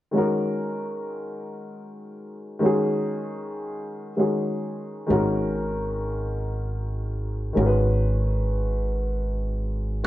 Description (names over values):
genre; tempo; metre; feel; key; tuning
hip hop; 97 BPM; 4/4; swing 62% on 16ths; Eb minor; A4 = 440 Hz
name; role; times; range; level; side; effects
dark upright piano; accompaniment; 0.1-10.1 s; Eb3 to Cb5; -25 LUFS; left 1 dB; none
upright bass; bass; 5.1-10.0 s; Ab1; -25 LUFS; equal; none
room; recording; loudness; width
light reverb; band playing live in one room; -23 LUFS; side -15 dB against mid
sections
0.1-10.0 A section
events
none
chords
0.1 Ebm7; 5.1 Abm11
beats
| 0.14 0.76 1.38 2.00 | 2.62 3.24 3.86 4.47 | 5.09 5.71 6.33 6.95 | 7.57 8.19 8.80 9.42 | 10.04